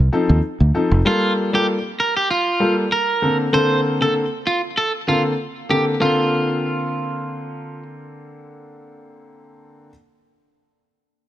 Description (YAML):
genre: afrobeats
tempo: 97 BPM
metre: 4/4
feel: swing 55% on 16ths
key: Bb major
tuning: A4 = 440 Hz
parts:
  - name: fingered electric bass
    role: bass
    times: 0.0-1.0 s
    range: F1 to Eb2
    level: -14 LUFS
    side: equal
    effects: none
  - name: warm grand piano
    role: accompaniment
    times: 0.1-9.9 s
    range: D3 to A4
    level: -20 LUFS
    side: left 1 dB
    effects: none
  - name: electric guitar at the edge of break-up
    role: melody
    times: 1.1-7.8 s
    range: F4 to C5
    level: -20 LUFS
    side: right 2 dB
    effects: ping-pong delay
room: light reverb, studio reverb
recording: none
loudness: -17 LUFS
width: side -12 dB against mid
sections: 0.0-1.1 A section; 1.1-6.0 B section; 6.0-8.5 C section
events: none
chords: 0.0 F7; 1.1 Gm9; 3.2 Bbmaj9